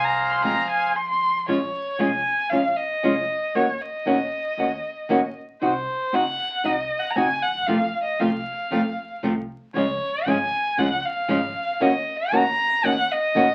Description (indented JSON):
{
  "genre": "tango",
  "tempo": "116 BPM",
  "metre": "4/4",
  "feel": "rubato",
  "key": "Bb minor",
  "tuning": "A4 = 439 Hz",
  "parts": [
    { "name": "bandoneon", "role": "melody", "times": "0.0-0.9 s", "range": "Ab4 to F5", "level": "-25 LUFS", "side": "equal", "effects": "none" },
    { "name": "clear violin", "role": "second line", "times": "0.0-13.5 s", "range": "C5 to C6", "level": "-26 LUFS", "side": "equal", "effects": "none" },
    { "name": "upright bass", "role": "bass", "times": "0.0-13.5 s", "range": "F1 to F2", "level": "-45 LUFS", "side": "equal", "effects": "none" },
    { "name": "nylon-string guitar", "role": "accompaniment", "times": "0.4-13.5 s", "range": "C3 to Gb4", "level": "-24 LUFS", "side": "equal", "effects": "none" }
  ],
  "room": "wet small room reverb, RT60 0.5 s",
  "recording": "very old 78 rpm record, vinyl crackle",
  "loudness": "-23 LUFS",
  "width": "mono",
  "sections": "0.0-1.5 A section; 1.5-13.5 B section",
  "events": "violin solo 1.5-13.5",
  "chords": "0.0 Fm; 1.5 Bbm7; 3.6 Ebm7; 5.6 Cdim; 7.7 F; 9.7 Db; 11.8 Ebm7",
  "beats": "0.44 0.96 | 1.48 2.00 2.52 3.04 | 3.55 4.07 4.58 5.10 | 5.62 6.13 6.64 7.16 | 7.68 8.19 8.71 9.23 | 9.75 10.26 10.78 11.30 | 11.81 12.33 12.84 13.36"
}